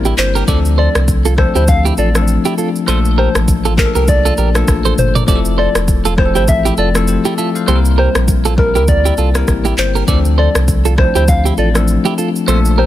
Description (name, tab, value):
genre	afrobeats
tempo	100 BPM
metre	4/4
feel	swing 58% on 16ths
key	unclear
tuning	A4 = 439 Hz
part	bell-like tine electric piano	accompaniment	0.0-12.9 s	E3 to F5	-18 LUFS	left 5 dB	phaser
part	sub bass with octave	bass	0.0-12.9 s	E1 to D2	-14 LUFS	equal	none
part	clean electric guitar	riff	0.1-12.9 s	E4 to D5	-20 LUFS	right 8 dB	ping-pong delay
part	afro-pop drum kit	drums	0.1-12.8 s	handclaps, kick drum, rim click, shaker, toms	-16 LUFS	equal	none
part	soft struck synth lead	melody	0.2-12.9 s	Bb4 to F5	-19 LUFS	left 1 dB	chorus, ping-pong delay
room	little or no reverb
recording	none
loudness	-10 LUFS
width	side -13 dB against mid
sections	0.0-12.9 A section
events	kick muted 12.5-12.9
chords	0.5 Dm7; 2.9 Bbmaj7; 5.3 Fmaj7; 7.7 C7; 10.1 Dm7